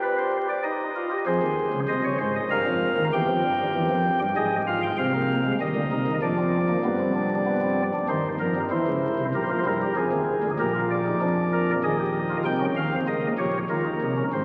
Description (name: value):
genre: classical, baroque-style 3-part fugue for pipe organ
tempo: 97 BPM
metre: 3/4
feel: straight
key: unclear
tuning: A4 = 440 Hz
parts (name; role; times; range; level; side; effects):
- pipe organ, flutes; solo; 0.0-14.4 s; Ab1 to G5; -25 LUFS; equal; none
room: wet cathedral reverb, RT60 5.8 s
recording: very old 78 rpm record, vinyl crackle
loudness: -25 LUFS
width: mono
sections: 0.0-8.7 A section; 8.7-14.4 B section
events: none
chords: 0.0 G; 0.6 Ebadd9; 1.3 Fm; 2.5 Ebadd9; 3.1 Em; 4.4 Fm/Ab; 5.0 Cm; 6.2 Bbadd9/F; 6.8 G; 8.1 Cm/Eb; 8.7 C7; 10.0 Fm; 10.6 Bb; 11.8 Eb; 12.5 Cm; 13.1 Bbm/Db; 13.7 Eb5